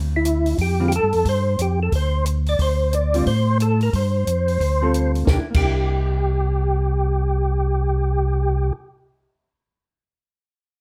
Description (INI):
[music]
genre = soul jazz organ trio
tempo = 179 BPM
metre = 4/4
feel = swing 62% on 8ths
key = C mixolydian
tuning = A4 = 441 Hz
[part]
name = mellow tonewheel organ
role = bass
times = 0.0-8.7 s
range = C2 to A2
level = -22 LUFS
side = equal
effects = overdrive, chorus vibrato, slow rotary speaker
[part]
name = percussive tonewheel organ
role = melody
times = 0.2-8.7 s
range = E4 to D5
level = -25 LUFS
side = equal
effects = slow rotary speaker, chorus vibrato
[part]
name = compact cocktail drum kit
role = drums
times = 0.2-5.6 s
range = crash cymbal, hi-hat, kick drum, snare drum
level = -27 LUFS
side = equal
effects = none
[part]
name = hollow-body jazz guitar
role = accompaniment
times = 0.8-0.9, 3.1-9.5 s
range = D3 to A4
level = -28 LUFS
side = equal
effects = none
[sound]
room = light reverb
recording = none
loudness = -20 LUFS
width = mono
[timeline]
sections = 0.0-5.3 A section; 5.3-8.0 B section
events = none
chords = 0.0 Dmadd9; 1.2 G7sus4; 2.6 Dm7; 5.3 C9